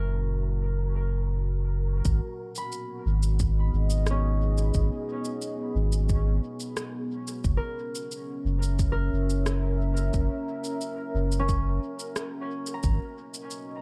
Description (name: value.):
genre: ambient dub.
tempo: 89 BPM.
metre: 4/4.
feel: straight.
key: G# minor.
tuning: A4 = 439 Hz.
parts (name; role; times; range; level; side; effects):
deep dark ambient pad; sustained chords; 0.0-13.8 s; A#3 to F#5; -37 LUFS; equal; chorus, built-in reverb.
concert harp; arpeggios; 0.0-13.8 s; C#4 to B5; -41 LUFS; equal; dub echo.
warm sub bass; bass; 0.0-13.0 s; F#1 to G#1; -27 LUFS; equal; none.
wind-like tuned noise texture; texture; 0.0-2.1 s; A#4; -47 LUFS; equal; built-in reverb.
electronic shaker and rim click; drums; 2.0-13.6 s; none; -39 LUFS; equal; dub echo.
electronic kick drum; drums; 2.1-13.0 s; none; -30 LUFS; equal; none.
room: little or no reverb.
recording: dark, warm production.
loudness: -28 LUFS.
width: mono.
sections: 0.0-2.0 A section; 2.0-13.8 B section.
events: filter sweep on ambient pad 0.0-2.0.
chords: 0.0 F#7; 2.0 G#m7; 7.4 F#7; 12.8 G#m7.